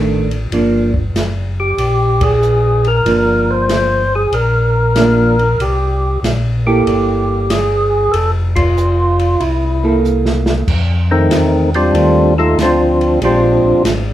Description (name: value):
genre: soul jazz organ trio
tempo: 94 BPM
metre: 4/4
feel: swing 67% on 8ths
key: unclear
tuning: A4 = 440 Hz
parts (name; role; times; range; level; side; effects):
- vintage hollow-body jazz guitar; accompaniment; 0.0-14.1 s; Eb3 to A4; -16 LUFS; right 2 dB; none
- mellow tonewheel organ; bass; 0.0-14.1 s; F1 to F2; -16 LUFS; equal; chorus vibrato, slow rotary speaker
- open jazz drum kit; drums; 0.3-14.1 s; crash cymbal, hi-hat, kick drum, ride cymbal, snare drum; -22 LUFS; equal; none
- percussive tonewheel organ; melody; 1.6-13.8 s; Eb3 to C5; -14 LUFS; equal; slow rotary speaker, overdrive
room: wet club reverb, RT60 0.7 s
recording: heard from further back in the room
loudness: -11 LUFS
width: side -12 dB against mid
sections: 0.0-10.7 A section; 10.7-14.1 B section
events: band accent 2.1-2.4, 8.5-8.8; drum fill 10.0-10.7; tonewheel organ solo 10.7-14.1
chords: 0.0 F6 (rootless); 0.5 Gm7; 5.6 C6; 8.1 F; 9.4 C6; 10.7 F13; 13.2 Bb13